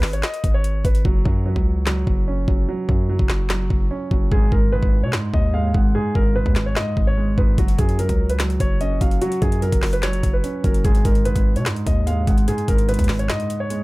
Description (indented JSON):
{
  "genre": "hip hop, trap",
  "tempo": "147 BPM",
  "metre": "4/4",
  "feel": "half-time",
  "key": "G# minor",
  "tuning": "A4 = 441 Hz",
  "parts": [
    { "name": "warm concert grand piano", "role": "melody", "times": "0.0-1.0, 4.3-13.8 s", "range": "F#4 to F#5", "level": "-26 LUFS", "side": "equal", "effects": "low-pass filter, tape echo" },
    { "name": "distorted 808-style bass", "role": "bass", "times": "0.0-13.3 s", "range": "F#1 to B2", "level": "-22 LUFS", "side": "equal", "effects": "distortion" },
    { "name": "trap drum kit", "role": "drums", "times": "0.0-13.8 s", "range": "handclaps, hi-hat, kick drum, snare drum", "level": "-20 LUFS", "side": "equal", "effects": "none" },
    { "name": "dark concert grand piano", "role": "accompaniment", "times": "1.1-13.8 s", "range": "G#2 to C#4", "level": "-24 LUFS", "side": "right 2 dB", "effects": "low-pass filter" }
  ],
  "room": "small room ambience",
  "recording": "none",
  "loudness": "-17 LUFS",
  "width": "side -21 dB against mid",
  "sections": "0.0-13.8 A section",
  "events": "hi-hats muted 1.1-7.6; break 13.3-13.8",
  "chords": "0.0 G#m; 1.1 F#5; 4.3 G#m; 7.6 F#5; 10.8 G#5",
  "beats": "0.23 0.64 | 1.05 1.46 1.87 2.27 | 2.68 3.09 3.50 3.91 | 4.32 4.72 5.13 5.54 | 5.95 6.36 6.76 7.17 | 7.58 7.99 8.40 8.81 | 9.21 9.62 10.03 10.44 | 10.85 11.26 11.66 12.07 | 12.48 12.89 13.29 13.70"
}